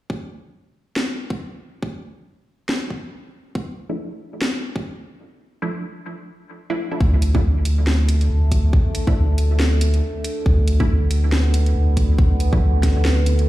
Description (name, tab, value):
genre	deep dubstep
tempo	139 BPM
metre	4/4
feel	swing 58% on 16ths, half-time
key	D dorian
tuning	A4 = 440 Hz
part	electronic kick drum	drums	0.1-12.9 s	none	-19 LUFS	equal	overdrive, high-pass filter on kick
part	garage drum kit	drums	1.0-4.5, 7.2-13.5 s	hi-hat, snare drum	-26 LUFS	equal	overdrive
part	filtered dub chord stab	stabs	3.9-12.6 s	F3 to E4	-29 LUFS	right 1 dB	phaser, dub echo
part	overtone-sweeping drone	sustained chords	7.5-13.5 s	D3 to B3	-28 LUFS	right 1 dB	chorus, built-in reverb
part	saturated sub bass	bass	7.0-13.5 s	D2	-16 LUFS	equal	none
room	light reverb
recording	played on a big sound system in a bare room, large studio reverb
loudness	-17 LUFS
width	side -16 dB against mid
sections	0.1-7.0 A section; 7.0-13.5 B section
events	none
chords	0.1 Dmadd9; 7.0 D5